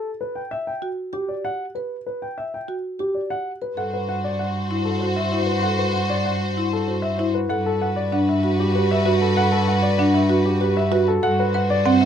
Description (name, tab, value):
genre	classical, minimalist pattern music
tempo	193 BPM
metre	6/4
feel	straight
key	unclear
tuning	A4 = 438 Hz
part	dark baby grand piano	melody	0.0-12.1 s	G4 to G5	-25 LUFS	left 2 dB	none
part	marimba with soft mallets	arpeggios	0.0-12.1 s	C4 to B4	-23 LUFS	right 1 dB	none
part	warm symphonic violin section	sustained chords	3.8-12.1 s	F#4 to C5	-26 LUFS	left 2 dB	none
part	rich cello	bass	3.8-12.1 s	G2	-23 LUFS	right 2 dB	none
room	little or no reverb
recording	close, detailed microphones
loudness	-19 LUFS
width	side -8 dB against mid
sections	0.0-3.8 A section; 3.8-12.1 B section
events	none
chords	0.0 Em (rootless); 3.8 D13/G (rootless); 7.5 Gmaj13; 11.2 D13/G